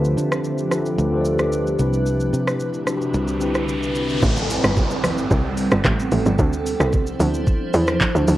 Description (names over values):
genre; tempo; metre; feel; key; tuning
amapiano; 111 BPM; 4/4; straight; A minor; A4 = 440 Hz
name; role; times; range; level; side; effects
mellow tine electric piano; accompaniment; 0.0-4.2 s; C3 to D5; -22 LUFS; left 2 dB; lush chorus
granular cloud pad; sustained chords; 0.0-8.4 s; D3 to C5; -25 LUFS; right 2 dB; built-in reverb, sidechain pumping
fingered electric bass; bass; 0.0-4.2 s; C2 to D3; -24 LUFS; right 1 dB; none
smooth R&B drum kit; drums; 0.0-8.4 s; handclaps, hi-hat, kick drum, rim click, shaker; -22 LUFS; equal; cassette tape
riser and downlifter; sound effects; 3.0-8.4 s; none; -29 LUFS; right 1 dB; none
tight log drum bass; bass; 4.2-8.4 s; G1 to E2; -20 LUFS; equal; none
congas; percussion; 4.2-8.4 s; none; -26 LUFS; right 3 dB; none
room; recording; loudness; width
little or no reverb; home recording on cassette; -18 LUFS; side -15 dB against mid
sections
0.0-4.2 A section; 4.2-8.4 B section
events
riser 3.0-4.2; drop 4.2-8.4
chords
0.0 G9/D; 1.8 Cmaj9; 4.2 Am9; 6.4 Dm9